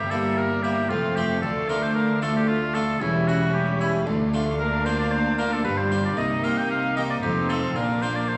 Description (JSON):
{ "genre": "classical, baroque-style concerto movement with solo episodes", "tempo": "114 BPM", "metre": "3/4", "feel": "straight", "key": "Bb major from 4.6 s", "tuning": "A4 = 442 Hz", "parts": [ { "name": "clear oboe", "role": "melody", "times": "0.0-8.4 s", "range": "E4 to G5", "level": "-29 LUFS", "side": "equal", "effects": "none" }, { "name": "warm chamber violin section", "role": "melody", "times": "0.0-8.4 s", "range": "Eb5 to F5", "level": "-39 LUFS", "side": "equal", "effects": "none" }, { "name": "rich chamber violin section", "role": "second line", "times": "0.0-8.4 s", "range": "Bb3 to Eb4", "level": "-35 LUFS", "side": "equal", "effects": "none" }, { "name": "dark chamber viola section", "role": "accompaniment", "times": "0.0-8.4 s", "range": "G3 to C4", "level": "-30 LUFS", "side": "equal", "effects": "none" }, { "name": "harpsichord", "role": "accompaniment", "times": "0.0-8.4 s", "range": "D2 to G4", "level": "-30 LUFS", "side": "equal", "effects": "none" }, { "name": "warm chamber cello section", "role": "bass", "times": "0.0-8.4 s", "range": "D2 to C3", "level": "-34 LUFS", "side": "equal", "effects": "none" }, { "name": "warm chamber double bass section", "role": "bass", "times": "0.0-8.4 s", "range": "E1 to D2", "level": "-33 LUFS", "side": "equal", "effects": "none" } ], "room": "wet recital hall reverb, RT60 1.7 s", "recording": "vinyl crackle", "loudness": "-24 LUFS", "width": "mono", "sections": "0.0-8.4 A section", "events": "none", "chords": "0.0 Edim/G; 0.9 F; 1.4 Dm; 3.0 C#dim/E; 4.1 Dm; 4.6 Bb/D; 5.6 G5; 6.2 Cm7; 7.2 F7; 7.8 Bb" }